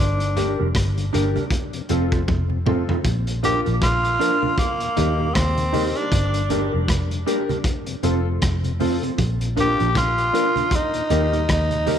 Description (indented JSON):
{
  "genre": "roots reggae",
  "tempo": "78 BPM",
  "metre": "4/4",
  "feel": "swing 58% on 16ths",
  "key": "Bb major",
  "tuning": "A4 = 439 Hz",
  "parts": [
    { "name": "raspy tenor saxophone", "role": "melody", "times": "0.0-12.0 s", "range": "Bb3 to G4", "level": "-22 LUFS", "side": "equal", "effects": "tape echo" },
    { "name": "vintage muted fingered electric bass", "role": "bass", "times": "0.0-12.0 s", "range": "F1 to Eb2", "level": "-22 LUFS", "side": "equal", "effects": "none" },
    { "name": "tonewheel organ", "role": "accompaniment", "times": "0.2-12.0 s", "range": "Eb2 to Eb4", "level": "-32 LUFS", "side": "left 8 dB", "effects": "slow rotary speaker, tape echo" },
    { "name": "crunchy breakbeat drum kit", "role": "drums", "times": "0.2-12.0 s", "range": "hi-hat, kick drum, rim click, toms", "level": "-25 LUFS", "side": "equal", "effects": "none" },
    { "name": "mellow electric guitar", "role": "accompaniment", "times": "0.4-12.0 s", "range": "C4 to Bb4", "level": "-27 LUFS", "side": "right 10 dB", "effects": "spring reverb, tape echo" },
    { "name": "warm upright piano", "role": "stabs", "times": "0.4-12.0 s", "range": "C4 to Bb4", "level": "-28 LUFS", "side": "left 10 dB", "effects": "none" },
    { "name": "congas", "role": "percussion", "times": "0.4-12.0 s", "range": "none", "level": "-32 LUFS", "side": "right 6 dB", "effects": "none" }
  ],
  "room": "light reverb, small room ambience",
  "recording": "1960s-style stereo with parts hard left and right",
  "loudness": "-18 LUFS",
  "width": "side -9 dB against mid",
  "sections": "0.0-12.0 A section",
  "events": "drum fill 2.3-3.0",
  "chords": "0.0 Gm; 1.5 F; 3.0 Bb; 4.6 Eb; 6.1 Gm; 7.7 F; 9.2 Bb; 10.7 Eb",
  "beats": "0.75 1.51 2.28 | 3.05 3.81 4.58 5.35 | 6.12 6.88 7.65 8.42 | 9.18 9.95 10.72 11.48"
}